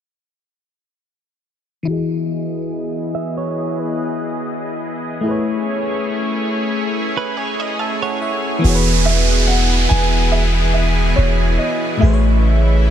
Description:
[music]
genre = contemporary R&B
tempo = 71 BPM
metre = 4/4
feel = swing 54% on 16ths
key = E major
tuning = A4 = 438 Hz
[part]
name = FM electric piano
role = accompaniment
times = 1.8-12.9 s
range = A2 to A5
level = -22 LUFS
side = left 3 dB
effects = chorus, low-pass filter
[part]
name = lush unison pad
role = sustained chords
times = 1.9-12.9 s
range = C#3 to D#5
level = -23 LUFS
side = right 1 dB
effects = chorus, low-pass filter
[part]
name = direct-recorded clean electric guitar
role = arpeggios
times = 3.1-8.6 s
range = B4 to E5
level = -26 LUFS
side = right 6 dB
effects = low-pass filter, analog delay
[part]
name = long sustained 808-style bass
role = bass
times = 8.6-12.9 s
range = E1 to A1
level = -15 LUFS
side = equal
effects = none
[part]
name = downlifter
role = sound effects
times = 8.6-12.9 s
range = none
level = -21 LUFS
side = right 2 dB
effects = none
[part]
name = vibraphone with soft mallets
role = texture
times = 8.6-12.4 s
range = F#4 to B4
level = -34 LUFS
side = right 6 dB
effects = none
[part]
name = dark concert grand piano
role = melody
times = 9.1-12.9 s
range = C#5 to G#5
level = -23 LUFS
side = right 1 dB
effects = analog delay
[sound]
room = light reverb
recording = none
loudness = -16 LUFS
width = side -10 dB against mid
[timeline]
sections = 1.9-8.6 A section; 8.6-12.9 B section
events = filter sweep 1.9-8.6; FM electric piano fill 6.9-8.6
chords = 1.9 Emaj7; 5.3 Amaj7; 8.6 E; 12.0 Amaj7

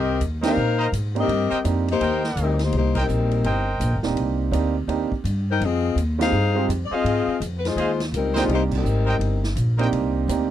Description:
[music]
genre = jazz, big band swing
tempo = 167 BPM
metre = 4/4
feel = swing 63% on 8ths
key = C minor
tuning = A4 = 440 Hz
[part]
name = dark saxophone section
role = melody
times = 0.0-9.4 s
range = G3 to G5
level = -23 LUFS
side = left 5 dB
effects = none
[part]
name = clear trumpet section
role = stabs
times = 0.0-4.0, 6.9-9.9 s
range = Ab4 to Bb5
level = -26 LUFS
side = right 2 dB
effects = none
[part]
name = upright bass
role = bass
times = 0.0-10.5 s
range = Eb1 to Bb2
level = -23 LUFS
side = equal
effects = none
[part]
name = vintage drum kit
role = drums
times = 0.2-10.4 s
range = crash cymbal, hi-hat, kick drum, ride cymbal, snare drum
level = -34 LUFS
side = equal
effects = none
[part]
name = clear grand piano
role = accompaniment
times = 0.4-1.9, 4.0-10.5 s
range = Ab3 to G4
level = -24 LUFS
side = right 7 dB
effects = none
[sound]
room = light reverb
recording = dry, close 1970s-style studio recording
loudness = -20 LUFS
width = side -11 dB against mid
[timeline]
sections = 0.0-10.5 A section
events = band accent 0.4, 2.9, 6.2, 8.7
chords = 0.0 Cm7; 5.6 Fm7; 8.5 Cm7

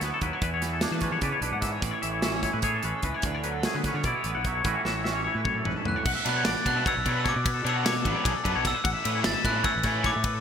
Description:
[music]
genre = math rock and midwest emo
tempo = 299 BPM (eighths)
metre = 7/8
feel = straight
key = A major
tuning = A4 = 440 Hz
[part]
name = twangy electric guitar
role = accompaniment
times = 0.0-6.1 s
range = E2 to B4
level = -31 LUFS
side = right 5 dB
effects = wide subtle chorus
[part]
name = twangy electric guitar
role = arpeggios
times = 0.0-10.4 s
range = F#4 to F#5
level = -30 LUFS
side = left 6 dB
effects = none
[part]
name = fuzz fingered electric bass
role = bass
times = 0.0-10.4 s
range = G#1 to E3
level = -32 LUFS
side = equal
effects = overdrive
[part]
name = modern studio drum kit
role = drums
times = 0.0-10.3 s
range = crash cymbal, hi-hat, kick drum, ride cymbal, snare drum, toms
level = -30 LUFS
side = equal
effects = gated reverb
[part]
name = glockenspiel with brass mallets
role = melody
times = 5.9-10.4 s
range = D6 to A6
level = -29 LUFS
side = right 2 dB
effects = none
[part]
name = overdriven electric guitar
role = riff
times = 6.3-10.1 s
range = B2 to E4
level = -31 LUFS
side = right 1 dB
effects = none
[sound]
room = moderate lush hall reverb, RT60 1.7 s, studio ambience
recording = bright 1980s-style digital production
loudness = -24 LUFS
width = side -8 dB against mid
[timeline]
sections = 0.0-6.1 A section; 6.1-10.4 B section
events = drum fill 4.9-6.1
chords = 0.4 E7; 1.8 Amaj9; 3.2 Dmaj13; 4.7 A69; 6.1 Bm9; 8.9 Aadd9

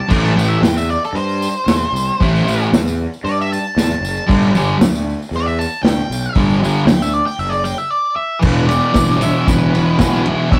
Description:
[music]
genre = garage rock duo or trio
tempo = 115 BPM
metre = 4/4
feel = straight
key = unclear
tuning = A4 = 440 Hz
[part]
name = octave-fuzz lead guitar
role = melody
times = 0.0-10.6 s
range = A4 to D6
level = -23 LUFS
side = equal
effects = distortion
[part]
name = thick fuzz guitar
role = riff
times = 0.1-10.6 s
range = E2 to A3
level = -17 LUFS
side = equal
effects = distortion
[part]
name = fuzz fingered electric bass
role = bass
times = 0.1-10.6 s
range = E1 to G2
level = -23 LUFS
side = equal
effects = overdrive, tube saturation
[part]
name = vintage drum kit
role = drums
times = 0.1-10.6 s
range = crash cymbal, hi-hat, kick drum, ride cymbal, snare drum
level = -20 LUFS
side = equal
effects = none
[part]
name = tambourine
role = percussion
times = 0.1-10.1 s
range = none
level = -36 LUFS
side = equal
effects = none
[sound]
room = moderate studio ambience, RT60 0.5 s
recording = rough rehearsal-room recording, tube saturation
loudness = -16 LUFS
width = mono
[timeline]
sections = 0.0-8.4 A section; 8.4-10.6 B section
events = lead electric guitar solo 0.0-8.4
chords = 0.0 Am; 4.3 G5; 8.4 Em

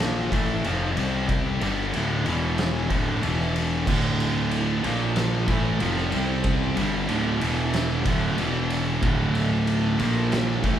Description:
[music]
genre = stoner and doom metal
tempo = 93 BPM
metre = 4/4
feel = straight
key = D minor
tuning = A4 = 441 Hz
[part]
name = high-gain distorted guitar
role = riff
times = 0.0-10.8 s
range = D2 to C4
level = -27 LUFS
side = right 1 dB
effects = distortion
[part]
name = thick fuzz guitar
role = riff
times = 0.0-10.8 s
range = D2 to C4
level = -29 LUFS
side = left 4 dB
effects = distortion
[part]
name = fuzz picked electric bass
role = bass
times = 0.0-10.8 s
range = D1 to C2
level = -29 LUFS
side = equal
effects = overdrive
[part]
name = oversized low-tuned drum kit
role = drums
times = 0.0-10.8 s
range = crash cymbal, kick drum, ride cymbal, snare drum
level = -28 LUFS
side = equal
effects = none
[part]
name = thick fuzz guitar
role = riff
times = 3.9-10.8 s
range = D2 to C4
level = -28 LUFS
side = right 5 dB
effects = distortion
[sound]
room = moderate large studio reverb, RT60 1.1 s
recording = band playing live in one room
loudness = -21 LUFS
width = side -10 dB against mid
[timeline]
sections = 0.0-10.8 A section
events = none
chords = 0.3 Fmaj7; 1.0 C5; 1.6 D5; 2.3 E5; 2.9 D5; 3.2 E5; 3.9 D5; 4.8 Bb5; 5.5 Fmaj7; 6.1 C5; 6.8 D5; 7.4 E5; 8.1 D5; 8.4 E5; 9.0 D5; 10.0 Bb5

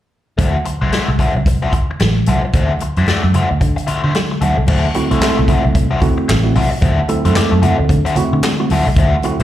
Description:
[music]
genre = funk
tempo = 112 BPM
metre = 4/4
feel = swing 60% on 16ths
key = D mixolydian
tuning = A4 = 440 Hz
[part]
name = crunchy overdriven guitar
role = accompaniment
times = 0.4-9.4 s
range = A3 to D5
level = -20 LUFS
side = left 3 dB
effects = wah, slapback echo
[part]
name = vintage muted fingered electric bass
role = bass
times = 0.4-9.4 s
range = A1 to D3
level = -16 LUFS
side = equal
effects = tube saturation
[part]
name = swinging big-band drum kit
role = drums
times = 0.4-9.4 s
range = crash cymbal, handclaps, hi-hat, kick drum, snare drum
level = -18 LUFS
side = left 1 dB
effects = none
[part]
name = congas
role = percussion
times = 0.4-9.4 s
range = none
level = -24 LUFS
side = right 3 dB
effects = slapback echo
[part]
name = tine electric piano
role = stabs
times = 4.9-9.4 s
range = A3 to A4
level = -18 LUFS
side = right 4 dB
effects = lush chorus, slapback echo
[sound]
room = small room ambience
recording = live gig heard through the venue's PA, club reverb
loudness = -13 LUFS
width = side -12 dB against mid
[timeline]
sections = 0.4-4.7 A section; 4.7-9.4 B section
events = none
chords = 0.4 D9

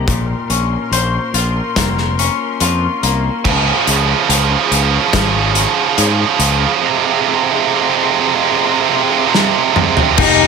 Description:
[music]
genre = post-rock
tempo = 71 BPM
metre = 4/4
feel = straight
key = F minor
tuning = A4 = 441 Hz
[part]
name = rich symphonic string section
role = sustained chords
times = 0.0-10.5 s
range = G4 to Db6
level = -23 LUFS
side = left 6 dB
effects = none
[part]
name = twangy electric guitar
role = arpeggios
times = 0.0-3.5 s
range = Bb2 to C5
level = -21 LUFS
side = left 5 dB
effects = tape echo
[part]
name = growling fingered electric bass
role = bass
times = 0.0-10.5 s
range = F1 to Ab2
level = -18 LUFS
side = left 1 dB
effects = overdrive
[part]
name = loose indie drum kit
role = drums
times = 0.1-10.4 s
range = crash cymbal, hi-hat, kick drum, snare drum, toms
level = -16 LUFS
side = left 2 dB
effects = none
[part]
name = tight distorted guitar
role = riff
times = 3.4-10.5 s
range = F2 to G4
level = -13 LUFS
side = right 11 dB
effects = distortion
[part]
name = warm cello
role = melody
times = 10.2-10.5 s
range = Eb4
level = -13 LUFS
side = left 7 dB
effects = none
[part]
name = overdriven electric guitar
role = riff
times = 10.2-10.5 s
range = F3 to G4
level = -15 LUFS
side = left 16 dB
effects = phaser
[sound]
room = light reverb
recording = none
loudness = -12 LUFS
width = side -5 dB against mid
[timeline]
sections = 0.0-10.2 A section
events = build-up 0.0-10.2; drum fill 9.3-10.2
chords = 0.1 Bbmadd9; 3.5 Db; 6.8 Fm

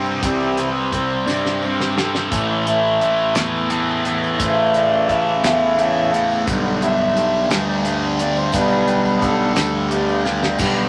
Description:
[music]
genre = psychedelic rock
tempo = 58 BPM (dotted quarters)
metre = 6/8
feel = straight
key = unclear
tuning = A4 = 441 Hz
[part]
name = fuzz guitar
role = riff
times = 0.0-10.9 s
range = G2 to C4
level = -23 LUFS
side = equal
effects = distortion, phaser
[part]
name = fuzz picked electric bass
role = bass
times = 0.0-10.9 s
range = A1 to G2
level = -26 LUFS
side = equal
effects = overdrive
[part]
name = tambourine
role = percussion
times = 0.1-10.8 s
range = none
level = -38 LUFS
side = equal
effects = none
[part]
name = pedal harmonium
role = sustained chords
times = 0.2-10.9 s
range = C#3 to F#5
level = -22 LUFS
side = equal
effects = none
[part]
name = damped 70s drum kit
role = drums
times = 0.2-10.8 s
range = crash cymbal, hi-hat, kick drum, snare drum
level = -26 LUFS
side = equal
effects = none
[sound]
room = wet small room reverb, RT60 0.5 s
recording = none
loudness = -18 LUFS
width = mono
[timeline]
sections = 0.0-10.6 A section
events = harmonium solo 0.0-10.6; drum fill 1.3-2.3, 10.3-10.6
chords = 0.0 C; 2.3 A; 6.5 G/B

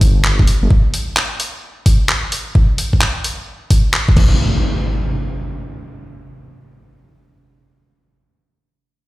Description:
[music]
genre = UK garage, two-step garage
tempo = 130 BPM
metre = 4/4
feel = swing 65% on 16ths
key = unclear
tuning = A4 = 442 Hz
[part]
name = dark detuned saw bass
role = bass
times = 0.0-0.7 s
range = D1 to G1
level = -16 LUFS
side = equal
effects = tube saturation
[part]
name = breakbeat sampler-style drum kit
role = drums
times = 0.0-4.3 s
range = crash cymbal, handclaps, hi-hat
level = -19 LUFS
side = equal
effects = none
[part]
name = electronic kick drum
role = drums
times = 0.0-4.3 s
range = none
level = -12 LUFS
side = equal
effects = overdrive
[part]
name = warbly tape-like pad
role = texture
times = 0.0-0.7 s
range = Bb3 to A5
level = -38 LUFS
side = equal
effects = chorus, built-in reverb, sidechain pumping
[part]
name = impact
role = sound effects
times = 4.2-8.0 s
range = none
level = -19 LUFS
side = equal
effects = none
[sound]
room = little or no reverb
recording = played on a big sound system in a bare room, stone room reverb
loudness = -13 LUFS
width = side -18 dB against mid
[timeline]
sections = 0.0-4.4 A section; 4.4-8.1 B section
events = none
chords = 0.5 D7b9/F#; 4.2 N.C.

